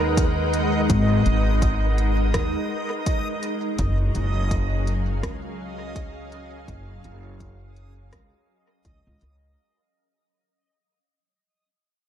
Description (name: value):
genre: ambient dub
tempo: 83 BPM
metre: 4/4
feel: swing 59% on 16ths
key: unclear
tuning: A4 = 441 Hz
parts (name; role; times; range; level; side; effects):
- soft additive organ-like pad; sustained chords; 0.0-9.6 s; F#3 to F#5; -27 LUFS; left 1 dB; ensemble chorus, built-in reverb
- upright bass; bass; 0.0-9.5 s; F#1 to D#2; -23 LUFS; equal; none
- backwards swelling texture; texture; 0.0-9.6 s; D#5; -33 LUFS; right 3 dB; built-in reverb
- electronic kick drum; drums; 0.2-9.0 s; none; -25 LUFS; equal; overdrive
- organic electronic drum kit; drums; 0.2-9.4 s; hi-hat, rim click; -32 LUFS; left 1 dB; dub echo
room: digital ambience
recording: echo-heavy mix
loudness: -20 LUFS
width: side -10 dB against mid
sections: 0.0-9.6 A section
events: fade-out 0.0-9.6; filter sweep on upright bass 0.0-9.6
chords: 0.0 G#m9; 3.8 F#maj9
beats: 0.17 | 0.90 1.62 2.34 3.07 | 3.79 4.51 5.24 5.96 | 6.68 7.40 8.13 8.85